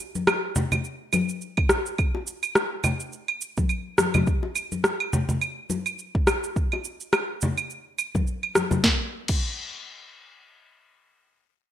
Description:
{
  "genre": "downtempo",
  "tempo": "105 BPM",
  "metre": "4/4",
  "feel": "swing 56% on 16ths",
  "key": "none",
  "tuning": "none",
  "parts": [
    { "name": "afro-pop drum kit", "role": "drums", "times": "0.2-9.4 s", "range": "claves, crash cymbal, rim click, shaker, snare drum", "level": "-24 LUFS", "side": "right 1 dB", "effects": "studio reverb" },
    { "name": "congas and bongos", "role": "percussion", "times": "0.2-8.8 s", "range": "none", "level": "-26 LUFS", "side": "left 2 dB", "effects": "none" },
    { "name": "electronic kick drum", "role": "drums", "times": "1.6-9.4 s", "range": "none", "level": "-25 LUFS", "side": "equal", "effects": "studio reverb" }
  ],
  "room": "light reverb",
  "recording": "rough home demo mix",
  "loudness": "-23 LUFS",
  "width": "side -11 dB against mid",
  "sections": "0.0-8.8 A section; 8.8-11.1 B section",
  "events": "none",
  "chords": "none",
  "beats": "0.27 0.84 1.41 | 1.98 2.55 3.12 3.70 | 4.27 4.84 5.41 5.98 | 6.55 7.12 7.70 8.27 | 8.84 9.41"
}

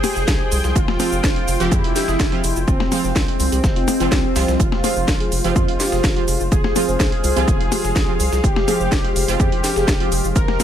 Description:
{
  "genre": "melodic techno",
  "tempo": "125 BPM",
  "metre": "4/4",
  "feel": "straight",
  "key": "F minor",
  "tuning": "A4 = 441 Hz",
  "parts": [
    { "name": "wide unison lead", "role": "melody", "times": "0.0-10.6 s", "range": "C4 to Bb4", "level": "-23 LUFS", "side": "left 1 dB", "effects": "lush chorus, ping-pong delay" },
    { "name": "sweeping resonant pad", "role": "sustained chords", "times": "0.0-10.6 s", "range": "F3 to G5", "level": "-28 LUFS", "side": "right 1 dB", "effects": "chorus, phaser, sidechain pumping" },
    { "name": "woody wave-folded pluck", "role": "arpeggios", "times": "0.0-10.6 s", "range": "F4 to G5", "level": "-27 LUFS", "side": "left 1 dB", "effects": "ensemble chorus, vintage 12-bit sampler grit, sidechain pumping, digital delay" },
    { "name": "dusty soul sampler-style drum kit", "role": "drums", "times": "0.0-10.6 s", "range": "hi-hat, shaker, snare drum", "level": "-32 LUFS", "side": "right 4 dB", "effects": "sidechain pumping on perc, high-pass filter on perc, sidechain pumping on hats, high-pass filter on hats, high-pass filter on snare" },
    { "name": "techno drum kit", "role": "drums", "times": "0.0-10.6 s", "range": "hi-hat, percussion blips, shaker, snare drum", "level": "-24 LUFS", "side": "left 2 dB", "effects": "overdrive, sidechain pumping on perc, sidechain pumping on hats" },
    { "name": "round analog bass", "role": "bass", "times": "0.2-10.6 s", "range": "F1 to F2", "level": "-23 LUFS", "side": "equal", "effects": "sidechain pumping" },
    { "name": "electronic kick drum", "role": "drums", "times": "0.3-10.5 s", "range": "none", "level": "-19 LUFS", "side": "equal", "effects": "overdrive" },
    { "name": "synth brass stab", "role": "stabs", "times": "1.0-10.6 s", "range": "F3 to G4", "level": "-26 LUFS", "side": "right 5 dB", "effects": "chorus, sidechain pumping, digital delay" }
  ],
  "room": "digital ambience",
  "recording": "none",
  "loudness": "-16 LUFS",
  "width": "side -10 dB against mid",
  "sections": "0.0-10.6 A section",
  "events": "none",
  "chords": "0.0 Fmadd9",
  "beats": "0.28 | 0.76 1.24 1.72 2.20 | 2.68 3.16 3.64 4.12 | 4.60 5.08 5.56 6.04 | 6.52 7.00 7.48 7.96 | 8.44 8.92 9.40 9.88 | 10.36"
}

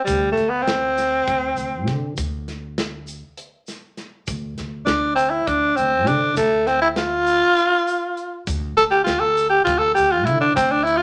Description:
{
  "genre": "progressive instrumental, band music in an uneven meter",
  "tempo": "200 BPM (eighths)",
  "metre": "7/8",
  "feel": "straight",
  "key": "D minor",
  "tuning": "A4 = 440 Hz",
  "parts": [
    { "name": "growling tenor saxophone", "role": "melody", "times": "0.0-11.0 s", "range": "G3 to A4", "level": "-19 LUFS", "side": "equal", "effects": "none" },
    { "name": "upright bass", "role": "bass", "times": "0.1-11.0 s", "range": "D2 to D3", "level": "-31 LUFS", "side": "equal", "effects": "none" },
    { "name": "tight metal drum kit", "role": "drums", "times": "0.1-11.0 s", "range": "hi-hat, kick drum, snare drum", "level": "-31 LUFS", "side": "equal", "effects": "none" },
    { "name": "tube shaker", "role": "percussion", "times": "0.1-10.8 s", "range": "none", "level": "-42 LUFS", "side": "equal", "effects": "none" }
  ],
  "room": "wet studio reverb, RT60 0.8 s",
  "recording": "none",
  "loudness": "-20 LUFS",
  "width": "mono",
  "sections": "0.0-11.0 A section",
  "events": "tenor saxophone solo 0.0-11.0",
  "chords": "0.0 D7(no3)",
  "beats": "| 0.08 0.38 0.68 0.98 1.28 1.58 1.88 | 2.18 2.48 2.78 3.08 3.38 3.68 3.98 | 4.28 4.58 4.88 5.18 5.48 5.78 6.08 | 6.38 6.68 6.98 7.28 7.58 7.87 8.17 | 8.47 8.77 9.07 9.37 9.67 9.97 10.27 | 10.57 10.87"
}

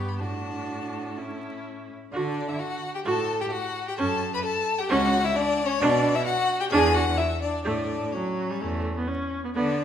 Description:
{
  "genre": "quick classical-period movement for string quartet",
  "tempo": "129 BPM",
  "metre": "4/4",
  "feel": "rubato",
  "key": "D major",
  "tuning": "A4 = 439 Hz",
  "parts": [
    { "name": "rich violin", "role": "melody", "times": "0.0-9.8 s", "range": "C#5 to C#6", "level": "-29 LUFS", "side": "left 6 dB", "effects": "none" },
    { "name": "rich violin", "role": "second line", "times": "0.0-9.8 s", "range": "C#4 to B4", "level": "-29 LUFS", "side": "left 1 dB", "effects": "none" },
    { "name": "warm viola", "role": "accompaniment", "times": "0.0-9.8 s", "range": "F#3 to F#4", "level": "-29 LUFS", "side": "right 2 dB", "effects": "none" },
    { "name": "rich cello", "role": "bass", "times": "0.0-9.8 s", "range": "C#2 to D3", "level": "-30 LUFS", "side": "right 2 dB", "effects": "none" }
  ],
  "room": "wet recital hall reverb, RT60 1.4 s",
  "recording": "minimal, uncompressed stereo recording, vinyl crackle",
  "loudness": "-23 LUFS",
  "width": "side -9 dB against mid",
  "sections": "0.0-2.1 A section; 2.1-9.8 B section",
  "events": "none",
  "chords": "0.2 D/A; 1.2 A; 2.1 D; 4.0 F#5; 5.8 Bm; 6.7 E9; 7.7 A",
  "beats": "| 0.20 0.68 1.17 1.65 | 2.13 2.60 3.06 3.52 | 3.99 4.45 4.90 5.36 | 5.81 6.27 6.72 7.18 | 7.66 8.13 8.61 9.08 | 9.55"
}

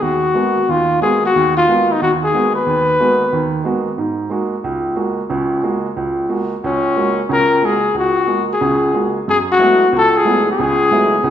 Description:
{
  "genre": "jazz",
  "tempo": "182 BPM",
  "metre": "4/4",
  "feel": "swing 64% on 8ths",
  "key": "unclear",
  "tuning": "A4 = 440 Hz",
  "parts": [
    { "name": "breathy trumpet", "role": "melody", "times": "0.0-3.5, 6.7-11.3 s", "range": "C#4 to B4", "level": "-14 LUFS", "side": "left 2 dB", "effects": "none" },
    { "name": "warm baby grand piano", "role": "accompaniment", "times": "0.0-11.3 s", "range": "C#2 to F#4", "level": "-18 LUFS", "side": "right 3 dB", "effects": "none" }
  ],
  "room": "wet recital hall reverb, RT60 1.4 s",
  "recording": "recorded in a church or concert hall",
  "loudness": "-13 LUFS",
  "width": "side -10 dB against mid",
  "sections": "0.0-9.3 A section; 9.3-11.3 B section",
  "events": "none",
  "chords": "0.0 G#m9; 4.0 F#add9; 9.3 F#m11",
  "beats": "| 0.02 0.35 0.68 1.01 | 1.34 1.68 2.01 2.34 | 2.67 3.00 3.33 3.66 | 3.99 4.32 4.65 4.98 | 5.31 5.64 5.97 6.30 | 6.63 6.96 7.29 7.62 | 7.95 8.28 8.61 8.94 | 9.27 9.60 9.93 10.26 | 10.59 10.92 11.25"
}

